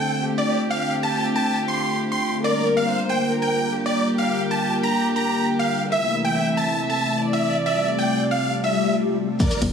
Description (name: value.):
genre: uplifting trance.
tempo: 138 BPM.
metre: 4/4.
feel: straight.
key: G dorian.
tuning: A4 = 440 Hz.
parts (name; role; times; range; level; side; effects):
big supersaw lead; melody; 0.0-9.6 s; Bb4 to C6; -24 LUFS; right 1 dB; sidechain pumping, digital delay.
warm studio violin section; second line; 0.0-9.0 s; G4 to E5; -26 LUFS; equal; dub echo.
wide unison pluck; second line; 0.0-9.6 s; D5 to C6; -32 LUFS; equal; none.
lush unison pad; sustained chords; 0.0-9.7 s; C3 to Bb4; -24 LUFS; left 1 dB; chorus, sidechain pumping.
swell and impact; sound effects; 8.7-9.7 s; none; -25 LUFS; left 6 dB; none.
electronic kick drum; drums; 9.4-9.7 s; none; -20 LUFS; equal; none.
punchy analog drum machine; drums; 9.4-9.7 s; crash cymbal, hi-hat; -31 LUFS; equal; none.
shekere; percussion; 9.4-9.6 s; none; -34 LUFS; left 4 dB; none.
tight sequencer bass; bass; 9.6-9.7 s; G1; -22 LUFS; left 1 dB; sidechain pumping.
room: wet scoring stage reverb, RT60 1.6 s, digital ambience.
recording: small room ambience.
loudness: -19 LUFS.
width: side -7 dB against mid.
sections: 0.0-9.4 A section.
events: swell 8.7-9.4; impact 9.4-9.7.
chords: 0.0 Dm7; 2.4 Gm7; 5.9 Am; 7.7 Fadd9.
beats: 0.27 | 0.70 1.14 1.57 2.01 | 2.44 2.88 3.31 3.75 | 4.18 4.62 5.05 5.49 | 5.92 6.36 6.79 7.23 | 7.66 8.10 8.53 8.97 | 9.40.